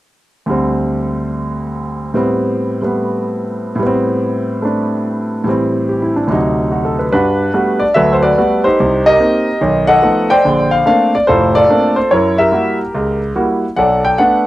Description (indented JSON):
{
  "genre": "solo jazz",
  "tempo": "145 BPM",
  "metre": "4/4",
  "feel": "swing 65% on 8ths",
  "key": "G major",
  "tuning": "A4 = 441 Hz",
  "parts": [
    { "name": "clear concert grand piano", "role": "solo", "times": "0.5-14.5 s", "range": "F1 to G5", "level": "-12 LUFS", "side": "equal", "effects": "cassette tape" }
  ],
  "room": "light reverb",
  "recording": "home recording on cassette",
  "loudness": "-12 LUFS",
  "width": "side -16 dB against mid",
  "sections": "0.5-7.1 A section; 7.1-14.5 B section",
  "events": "none",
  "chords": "0.5 D7sus4; 2.1 Am9; 5.5 Am7; 6.3 D7b9; 7.1 Gmaj9; 8.8 Cm7; 9.6 B7#11; 10.4 Bbmaj9; 12.1 F#7b9; 13.8 Bm7"
}